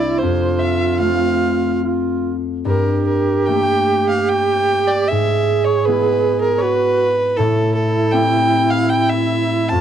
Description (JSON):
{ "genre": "celtic folk, Celtic slow air", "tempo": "72-80 BPM", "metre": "3/4", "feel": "rubato", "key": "unclear", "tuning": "A4 = 444 Hz", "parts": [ { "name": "dark fiddle", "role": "melody", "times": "0.0-9.8 s", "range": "A4 to A5", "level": "-19 LUFS", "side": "equal", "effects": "none" }, { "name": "mellow duduk", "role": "second line", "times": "0.0-9.8 s", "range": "E4 to G#4", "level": "-19 LUFS", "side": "right 7 dB", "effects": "none" }, { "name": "concert harp", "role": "accompaniment", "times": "0.0-9.8 s", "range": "C2 to G4", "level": "-20 LUFS", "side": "left 3 dB", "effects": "none" } ], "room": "small room reverb", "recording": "dry, close 1970s-style studio recording", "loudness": "-14 LUFS", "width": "side -9 dB against mid", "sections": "0.0-9.8 A section", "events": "none", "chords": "0.2 F; 2.7 Gmadd9; 5.1 E/G#; 7.4 Am7" }